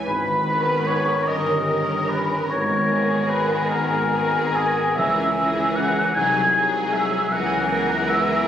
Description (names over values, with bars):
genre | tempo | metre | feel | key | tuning
classical | 50 BPM (dotted quarters) | 6/8 | uneven beats, rubato | G# minor | A4 = 440 Hz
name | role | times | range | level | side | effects
rich studio violin section | melody | 0.0-8.5 s | G#4 to B4 | -28 LUFS | left 4 dB | none
dark clarinet | second line | 0.0-8.5 s | G#4 to G#5 | -31 LUFS | left 1 dB | none
rich symphonic violin section | second line | 0.0-8.5 s | B3 to D#4 | -34 LUFS | left 2 dB | none
rich symphonic viola section | accompaniment | 0.0-8.5 s | D#3 to F#3 | -29 LUFS | equal | none
mellow French horn section | sustained chords | 0.0-8.5 s | D#3 to D#4 | -32 LUFS | left 4 dB | none
concert harp | arpeggios | 0.0-8.5 s | G2 to G#5 | -32 LUFS | left 6 dB | none
mellow hollow concert flute | second line | 0.1-8.5 s | G#5 to G#6 | -25 LUFS | left 1 dB | none
warm oboe | second line | 0.1-8.5 s | G#4 to G#5 | -26 LUFS | right 1 dB | none
rich studio double bass section | bass | 0.1-8.3 s | G1 to C#2 | -31 LUFS | right 3 dB | none
rich symphonic cello section | bass | 0.1-8.5 s | G#4 to B4 | -28 LUFS | right 2 dB | none
warm tuba | bass | 0.1-8.3 s | G1 to C#2 | -30 LUFS | right 3 dB | none
timpani | percussion | 5.0-6.1 s | C#3 | -35 LUFS | right 1 dB | none
room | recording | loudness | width
wet concert hall reverb, RT60 2.0 s | recorded on a phone in the room, club reverb | -18 LUFS | side -9 dB against mid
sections
0.1-8.5 A section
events
none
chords
0.1 G#m; 1.3 D#7/G; 2.5 G#m; 5.0 C#m; 6.2 G#7/B#; 7.3 C#m7